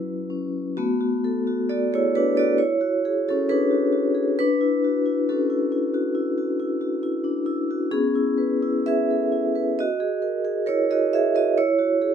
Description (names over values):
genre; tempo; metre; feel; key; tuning
classical, contemporary piece for solo vibraphone; 67 BPM; 4/4; rubato; B dorian; A4 = 440 Hz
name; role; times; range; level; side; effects
vibraphone with medium mallets; solo; 0.0-12.1 s; A3 to E5; -20 LUFS; equal; none
room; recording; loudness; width
light reverb; none; -20 LUFS; side -8 dB against mid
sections
0.8-12.1 A section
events
none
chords
0.0 F#7sus4; 0.8 Bm7; 2.6 E9; 4.4 Dmaj9; 7.9 C#m7; 9.8 F#9; 11.6 Eadd9